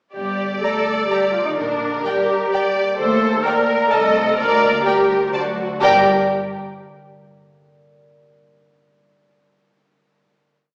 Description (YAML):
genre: cinematic, playful, whimsical film cue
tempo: 127 BPM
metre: 3/4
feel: straight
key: G minor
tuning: A4 = 439 Hz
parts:
  - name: warm studio viola section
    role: accompaniment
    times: 0.1-6.1 s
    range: D4 to Bb4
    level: -22 LUFS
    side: equal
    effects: none
  - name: warm studio violin section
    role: melody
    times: 0.2-6.1 s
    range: Bb4 to G5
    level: -24 LUFS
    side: equal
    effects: none
  - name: concert harp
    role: arpeggios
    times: 0.2-6.1 s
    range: G2 to Bb5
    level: -27 LUFS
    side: equal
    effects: none
  - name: warm studio cello section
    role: bass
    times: 0.2-6.1 s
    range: D3 to Bb3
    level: -30 LUFS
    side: equal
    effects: none
  - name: warm studio double bass section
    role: bass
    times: 0.2-6.1 s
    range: G1 to Eb2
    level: -34 LUFS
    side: equal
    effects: none
  - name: warm studio violin section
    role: second line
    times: 0.6-6.1 s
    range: Bb4 to Bb5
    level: -26 LUFS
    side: equal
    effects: none
room: wet scoring stage reverb, RT60 1.7 s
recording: heard from further back in the room, small speaker sound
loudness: -18 LUFS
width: mono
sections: 0.2-5.8 A section; 5.8-7.2 final chord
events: none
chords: 0.2 G5; 1.6 Gm/Bb; 3.0 Ebmaj7(no3); 3.9 Adim/C; 4.4 Gm/D; 5.3 D7; 5.8 Gm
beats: | 0.15 0.63 1.11 | 1.58 2.06 2.53 | 3.00 3.46 3.92 | 4.38 4.86 5.33 | 5.81